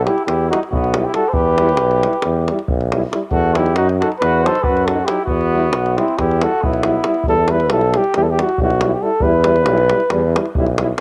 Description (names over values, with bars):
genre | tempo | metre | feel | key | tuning
balkan folk, Balkan brass band | 274 BPM (eighths) | 9/8 | straight | E harmonic minor | A4 = 440 Hz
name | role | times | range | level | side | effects
dark cornet | melody | 0.0-10.6 s | E4 to C5 | -20 LUFS | equal | cassette tape
dark trumpet | second line | 0.0-7.2 s | B3 to A4 | -25 LUFS | equal | cassette tape
clear tuba | bass | 0.0-10.9 s | B1 to F#2 | -21 LUFS | equal | none
warm French horn | accompaniment | 0.1-10.9 s | D#4 to E4 | -28 LUFS | equal | cassette tape
warm euphonium | accompaniment | 0.1-10.9 s | F#3 to G3 | -28 LUFS | equal | cassette tape
davul | percussion | 0.1-11.0 s | none | -26 LUFS | equal | none
room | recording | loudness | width
light reverb, small room ambience | home recording on cassette | -16 LUFS | mono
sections
0.0-7.3 A section; 7.3-11.0 A section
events
none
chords
0.0 Em; 3.3 B7; 5.3 Em